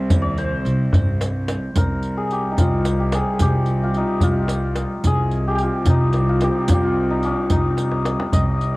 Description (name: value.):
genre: Persian modal ensemble.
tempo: 73 BPM (dotted quarters).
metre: 6/8.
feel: straight.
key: C dastgah shur.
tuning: A4 = 440 Hz.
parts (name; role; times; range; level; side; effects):
santur; melody; 0.0-8.8 s; Db4+45c to F5; -23 LUFS; left 1 dB; cassette tape.
clear chamber cello section; drone; 0.0-8.8 s; C2; -25 LUFS; right 1 dB; cassette tape.
upright bass; bass; 0.1-8.8 s; C2 to G2; -22 LUFS; equal; none.
riq; percussion; 0.1-8.7 s; none; -30 LUFS; right 4 dB; none.
tombak; percussion; 0.1-8.5 s; none; -20 LUFS; equal; none.
room: light reverb.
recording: home recording on cassette.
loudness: -17 LUFS.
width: side -21 dB against mid.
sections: 0.0-1.7 A section; 1.7-8.8 B section.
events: drum fill 7.8-8.3.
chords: none.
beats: | 0.11 0.93 | 1.75 2.57 | 3.39 4.21 | 5.04 5.86 | 6.68 7.50 | 8.32.